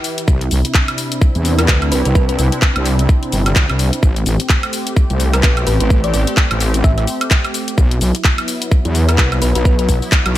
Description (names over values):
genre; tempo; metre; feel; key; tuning
bass house; 128 BPM; 4/4; swing 58% on 16ths; unclear; A4 = 435 Hz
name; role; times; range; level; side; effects
sweeping resonant pad; sustained chords; 0.0-10.4 s; C3 to B4; -23 LUFS; equal; chorus, sidechain pumping
garage drum kit; drums; 0.0-10.4 s; handclaps, hi-hat, shaker, woodblock; -19 LUFS; left 1 dB; studio reverb
wobble bass; bass; 0.3-10.4 s; G1 to E2; -16 LUFS; equal; chorus, overdrive, sidechain pumping
electronic kick drum; drums; 0.3-10.2 s; none; -13 LUFS; equal; studio reverb
thumb-piano-like synth pluck; melody; 1.6-2.4, 5.3-9.9 s; B4 to E5; -24 LUFS; left 1 dB; chorus, dub echo
room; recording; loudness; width
digital ambience; none; -12 LUFS; side -14 dB against mid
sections
0.0-10.4 A section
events
none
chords
0.3 Cadd9; 4.0 Am7; 7.8 Bsus4